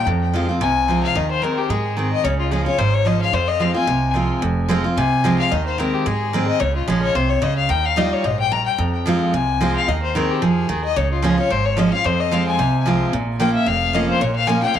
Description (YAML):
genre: bluegrass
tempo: 220 BPM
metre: 4/4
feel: swing 55% on 8ths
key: F minor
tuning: A4 = 438 Hz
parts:
  - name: clear fiddle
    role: melody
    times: 0.0-14.8 s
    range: F4 to Bb5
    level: -21 LUFS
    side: left 7 dB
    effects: tape echo
  - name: picked steel-string acoustic guitar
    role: accompaniment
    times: 0.0-14.8 s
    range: F2 to F4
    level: -20 LUFS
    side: right 2 dB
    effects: none
  - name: upright bass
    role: bass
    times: 0.1-14.8 s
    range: F1 to Ab2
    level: -24 LUFS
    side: right 2 dB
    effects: none
room: moderate spring reverb, RT60 1.9 s, small room reverb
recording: none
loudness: -16 LUFS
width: side -9 dB against mid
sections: 0.0-4.4 A section; 4.4-13.1 A section; 13.1-14.8 B section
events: none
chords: 0.1 Fm; 1.2 Ab/Eb; 2.2 Db; 3.3 Fm; 5.5 Ab/Eb; 6.6 Db; 7.7 Ebadd9; 8.8 Fm; 9.9 Ab/Eb; 11.0 Db; 12.0 Fm; 13.1 Bbm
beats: | 0.07 0.34 0.61 0.88 | 1.15 1.43 1.70 1.97 | 2.24 2.51 2.79 3.06 | 3.33 3.60 3.88 4.15 | 4.42 4.70 4.97 5.24 | 5.51 5.79 6.06 6.33 | 6.61 6.88 7.15 7.42 | 7.70 7.97 8.24 8.52 | 8.79 9.06 9.33 9.60 | 9.88 10.15 10.42 10.69 | 10.96 11.23 11.51 11.78 | 12.05 12.32 12.59 12.86 | 13.13 13.40 13.67 13.94 | 14.21 14.48 14.75